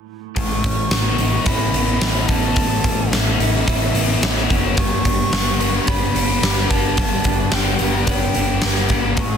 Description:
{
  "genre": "rock, shoegaze and dream pop",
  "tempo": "109 BPM",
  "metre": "4/4",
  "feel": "straight",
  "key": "A mixolydian",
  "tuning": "A4 = 437 Hz",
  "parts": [
    { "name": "string machine, violas", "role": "sustained chords", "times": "0.3-9.4 s", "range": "C#4 to B5", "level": "-31 LUFS", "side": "right 2 dB", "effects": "none" },
    { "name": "breathy jazz flute", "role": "melody", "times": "0.4-9.4 s", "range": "E5 to C#6", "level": "-26 LUFS", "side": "right 3 dB", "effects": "tape echo" },
    { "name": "picked twelve-string acoustic guitar", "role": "arpeggios", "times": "0.4-9.4 s", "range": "E3 to G4", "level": "-30 LUFS", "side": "right 2 dB", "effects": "none" },
    { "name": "crunchy overdriven guitar", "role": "riff", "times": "0.4-9.4 s", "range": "A2 to B4", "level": "-23 LUFS", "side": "left 8 dB", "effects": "lush chorus" },
    { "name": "overdriven semi-hollow guitar", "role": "riff", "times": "0.4-9.4 s", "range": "A2 to B4", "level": "-27 LUFS", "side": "right 14 dB", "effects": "reverse reverb" },
    { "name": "growling picked electric bass", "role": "bass", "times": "0.4-9.4 s", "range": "F#1 to A1", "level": "-22 LUFS", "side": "equal", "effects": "overdrive" },
    { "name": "huge arena drum kit", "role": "drums", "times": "0.4-9.3 s", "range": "hi-hat, kick drum, snare drum", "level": "-20 LUFS", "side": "equal", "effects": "none" }
  ],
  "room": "studio ambience",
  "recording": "dense, heavily limited modern master",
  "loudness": "-16 LUFS",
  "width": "side -7 dB against mid",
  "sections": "0.4-9.4 A section",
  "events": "none",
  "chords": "0.4 Aadd9; 4.8 G",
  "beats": "| 0.37 0.92 1.47 2.02 | 2.57 3.13 3.68 4.23 | 4.78 5.33 5.88 6.43 | 6.98 7.53 8.08 8.63 | 9.18"
}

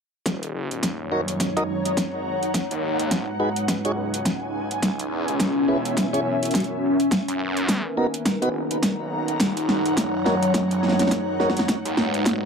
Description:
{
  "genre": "glitch hop",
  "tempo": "105 BPM",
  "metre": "4/4",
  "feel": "swing 58% on 16ths",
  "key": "Eb phrygian",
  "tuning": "A4 = 442 Hz",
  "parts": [
    { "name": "dark analog pad", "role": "sustained chords", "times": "1.0-12.5 s", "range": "Gb3 to Db5", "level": "-29 LUFS", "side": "equal", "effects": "chorus, sidechain pumping" },
    { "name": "phased detuned saw bass", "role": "bass", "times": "0.3-12.4 s", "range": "Eb1 to Gb2", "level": "-31 LUFS", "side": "equal", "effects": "phaser, high-pass filter" },
    { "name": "electronic kick drum", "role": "drums", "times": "0.3-12.4 s", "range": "none", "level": "-32 LUFS", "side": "equal", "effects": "overdrive, high-pass filter on kick, high-pass filter on room" },
    { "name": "pop drum kit", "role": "drums", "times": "0.3-12.4 s", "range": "hi-hat, snare drum", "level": "-24 LUFS", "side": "equal", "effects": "overdrive" },
    { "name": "ethereal airy pad", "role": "texture", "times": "1.1-12.5 s", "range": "Db4 to Bb5", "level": "-26 LUFS", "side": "left 1 dB", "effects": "ensemble chorus, built-in reverb, sidechain pumping" },
    { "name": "mellow tonewheel organ", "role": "stabs", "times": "1.1-11.5 s", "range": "B3 to Eb5", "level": "-26 LUFS", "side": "right 1 dB", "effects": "slow rotary speaker, sidechain pumping, tape echo" }
  ],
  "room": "wet small room reverb, RT60 0.5 s",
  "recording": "dark, warm production",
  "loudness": "-21 LUFS",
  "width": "side -6 dB against mid",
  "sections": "0.3-12.5 A section",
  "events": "build-up 0.3-12.5; drum fill 0.3-12.5",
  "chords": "0.3 Ebm7; 2.5 Abm7; 4.8 Dbm7; 7.1 Bmaj7; 9.4 Ebm7; 11.7 Abm7",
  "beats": "| 0.26 0.83 1.40 1.97 | 2.54 3.12 3.69 4.26 | 4.83 5.40 5.97 6.54 | 7.12 7.69 8.26 8.83 | 9.40 9.97 10.54 11.12 | 11.69 12.26"
}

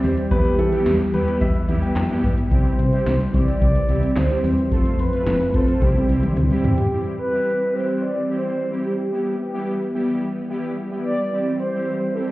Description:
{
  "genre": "synth-pop",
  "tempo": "109 BPM",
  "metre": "4/4",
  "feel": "straight",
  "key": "C major",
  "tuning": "A4 = 440 Hz",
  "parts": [
    { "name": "mellow horn-like synth lead", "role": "melody", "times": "0.0-12.3 s", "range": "G4 to D5", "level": "-24 LUFS", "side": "equal", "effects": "chorus, phaser, ping-pong delay" },
    { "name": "clear baby grand piano", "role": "second line", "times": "0.0-2.1 s", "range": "A4 to G5", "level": "-28 LUFS", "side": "left 2 dB", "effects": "ping-pong delay" },
    { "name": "analog synth brass", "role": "accompaniment", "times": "0.0-12.3 s", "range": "G3 to B4", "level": "-26 LUFS", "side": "right 1 dB", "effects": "chorus" },
    { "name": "string machine, violas", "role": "sustained chords", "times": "0.0-12.3 s", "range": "E3 to C4", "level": "-26 LUFS", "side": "equal", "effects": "ensemble chorus" },
    { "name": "solid FM bass", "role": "bass", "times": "0.0-6.8 s", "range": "F1 to E3", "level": "-21 LUFS", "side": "equal", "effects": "none" },
    { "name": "electro analog drum machine", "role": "drums", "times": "0.0-6.9 s", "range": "handclaps, hi-hat, kick drum, snare drum, toms", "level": "-22 LUFS", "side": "equal", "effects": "none" }
  ],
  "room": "light reverb, digital ambience",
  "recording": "heard muffled through a wall, stone room reverb, EQ",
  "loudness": "-18 LUFS",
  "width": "side -18 dB against mid",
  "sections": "0.0-6.9 A section; 6.9-12.3 A section",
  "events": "drum fill 5.8-6.9",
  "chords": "0.3 Em; 2.5 C; 4.7 F; 5.8 C; 9.1 Em; 11.3 C",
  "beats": "| 0.31 0.86 1.41 1.96 | 2.52 3.06 3.62 4.17 | 4.72 5.27 5.82 6.37 | 6.92 7.47 8.02 8.57 | 9.12 9.67 10.22 10.77 | 11.32 11.87"
}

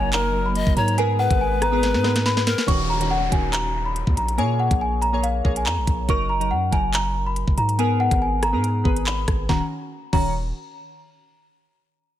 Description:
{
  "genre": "hip hop, drill",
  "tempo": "141 BPM",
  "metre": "4/4",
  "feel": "half-time",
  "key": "Eb minor",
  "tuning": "A4 = 444 Hz",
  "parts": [
    { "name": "celesta", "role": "melody", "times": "0.0-10.3 s", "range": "F5 to Db6", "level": "-24 LUFS", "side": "left 1 dB", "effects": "ping-pong delay" },
    { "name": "breathy bright pan flute", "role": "second line", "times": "0.0-2.7 s", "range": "Bb4 to Eb5", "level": "-26 LUFS", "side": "left 5 dB", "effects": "ping-pong delay" },
    { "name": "glassy digital keys", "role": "accompaniment", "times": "0.0-10.3 s", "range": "Eb3 to Db5", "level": "-27 LUFS", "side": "right 1 dB", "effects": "chorus, phaser" },
    { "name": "muted studio string section", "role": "sustained chords", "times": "0.0-2.7 s", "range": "Gb3 to Eb4", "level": "-30 LUFS", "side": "right 2 dB", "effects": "none" },
    { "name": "long sustained 808-style bass", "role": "bass", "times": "0.0-10.5 s", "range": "Eb1 to Bb2", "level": "-24 LUFS", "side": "equal", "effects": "none" },
    { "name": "drill drum kit", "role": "drums", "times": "0.1-10.2 s", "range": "crash cymbal, handclaps, hi-hat, kick drum, rim click, snare drum", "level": "-23 LUFS", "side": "equal", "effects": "vintage 12-bit sampler grit" },
    { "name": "downlifter", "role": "sound effects", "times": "2.7-6.1 s", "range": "none", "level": "-33 LUFS", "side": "left 1 dB", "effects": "none" }
  ],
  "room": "little or no reverb",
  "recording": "none",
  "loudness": "-19 LUFS",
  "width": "side -12 dB against mid",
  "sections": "0.0-2.7 A section; 2.7-9.5 B section; 9.5-11.2 C section",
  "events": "drum fill 1.8-2.7",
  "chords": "0.0 Gb6; 1.0 Abmadd9; 2.7 Ebm7; 4.4 Bbm7; 6.1 Gb6; 7.8 Abmadd9; 9.5 Ebm7",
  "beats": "0.13 0.56 | 0.98 1.41 1.83 2.26 | 2.68 3.11 3.53 3.96 | 4.38 4.81 5.24 5.66 | 6.09 6.51 6.94 7.36 | 7.79 8.21 8.64 9.06 | 9.49 9.92 10.34"
}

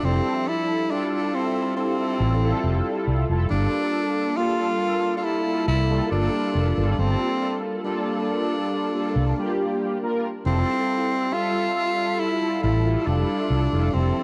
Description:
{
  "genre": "vaporwave",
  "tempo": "69 BPM",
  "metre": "4/4",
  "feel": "straight",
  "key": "F major",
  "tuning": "A4 = 440 Hz",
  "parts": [
    { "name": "clear tenor saxophone", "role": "melody", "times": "0.0-14.2 s", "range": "C4 to F4", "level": "-27 LUFS", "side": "equal", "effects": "tape echo" },
    { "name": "mellow synth brass", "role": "accompaniment", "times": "0.0-14.2 s", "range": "F3 to E5", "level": "-29 LUFS", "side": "equal", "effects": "ensemble chorus" },
    { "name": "fretless electric bass", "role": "bass", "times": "0.0-14.1 s", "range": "F1 to C2", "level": "-24 LUFS", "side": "equal", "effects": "tube saturation" }
  ],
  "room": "light reverb, small room ambience",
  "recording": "dry, gritty hardware recording, cassette tape",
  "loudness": "-23 LUFS",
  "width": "mono",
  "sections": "0.0-14.2 A section",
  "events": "none",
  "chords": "0.0 Fmaj9; 3.5 Gm9; 10.5 Fmaj9",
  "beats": "| 0.03 0.90 1.77 2.64 | 3.51 4.38 5.25 6.12 | 6.99 7.86 8.73 9.60 | 10.47 11.34 12.21 13.07 | 13.94"
}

